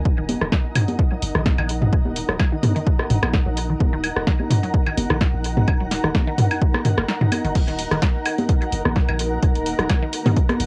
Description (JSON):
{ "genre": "minimal techno", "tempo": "128 BPM", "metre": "4/4", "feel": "swing 54% on 16ths", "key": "Eb minor", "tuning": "A4 = 442 Hz", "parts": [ { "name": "punchy sub bass", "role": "bass", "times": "0.0-10.7 s", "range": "Eb1 to Bb1", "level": "-29 LUFS", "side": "equal", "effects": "sidechain pumping" }, { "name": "flickering grainy texture", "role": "texture", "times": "0.0-10.7 s", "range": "Bb3 to Gb5", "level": "-38 LUFS", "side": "equal", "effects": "none" }, { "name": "granular cloud pad", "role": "texture", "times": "0.0-10.7 s", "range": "Eb4 to Bb5", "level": "-31 LUFS", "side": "equal", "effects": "built-in reverb, sidechain pumping, cassette tape" }, { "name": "electronic kick drum", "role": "drums", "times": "0.1-10.5 s", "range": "none", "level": "-21 LUFS", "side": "equal", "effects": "cassette tape" }, { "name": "resonant blip pluck", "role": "riff", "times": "0.2-10.3 s", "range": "Eb3 to Bb3", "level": "-32 LUFS", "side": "equal", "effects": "phaser, sidechain pumping, cassette tape, tape echo" }, { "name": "punchy analog drum machine", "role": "drums", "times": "0.3-10.7 s", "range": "crash cymbal, hi-hat, snare drum", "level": "-30 LUFS", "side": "equal", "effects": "cassette tape" }, { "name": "garage drum kit", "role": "percussion", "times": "0.3-10.6 s", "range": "congas, rim click, toms, woodblock", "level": "-24 LUFS", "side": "equal", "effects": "cassette tape, analog delay" } ], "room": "light reverb", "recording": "home recording on cassette", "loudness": "-20 LUFS", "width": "mono", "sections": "0.0-7.6 A section; 7.6-10.7 B section", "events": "fade-in on ambient pad 0.0-7.6; kick drops out 7.1-7.6; drop 7.6-10.7", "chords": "0.0 Ebm" }